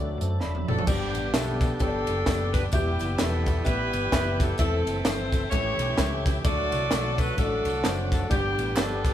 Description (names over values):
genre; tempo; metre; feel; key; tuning
uptempo gospel; 129 BPM; 4/4; swing 59% on 8ths; G major; A4 = 439 Hz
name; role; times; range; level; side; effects
dark baby grand piano; accompaniment; 0.0-9.1 s; G2 to B5; -33 LUFS; left 3 dB; none
mellow French horn section; sustained chords; 0.0-0.9 s; D3 to D4; -43 LUFS; equal; none
tonewheel organ; sustained chords; 0.0-9.1 s; D3 to E5; -35 LUFS; right 2 dB; fast rotary speaker, chorus vibrato
hollow-body short-scale fingered electric bass; bass; 0.0-9.1 s; E1 to F#2; -30 LUFS; equal; none
crisp fusion drum kit; drums; 0.2-9.1 s; crash cymbal, hi-hat, kick drum, ride cymbal, snare drum, toms; -27 LUFS; equal; none
edgy saxophone section; melody; 0.7-9.1 s; B3 to D5; -28 LUFS; equal; none
tambourine and handclaps; percussion; 0.9-9.1 s; none; -40 LUFS; equal; none
room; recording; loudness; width
moderate stone room reverb, RT60 1.2 s; band playing live in one room; -23 LUFS; side -11 dB against mid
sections
0.9-9.1 A section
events
drum fill 0.4-0.9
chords
0.0 D; 0.9 G; 2.7 Em; 4.6 Am/E; 5.5 A7; 6.4 D; 8.3 G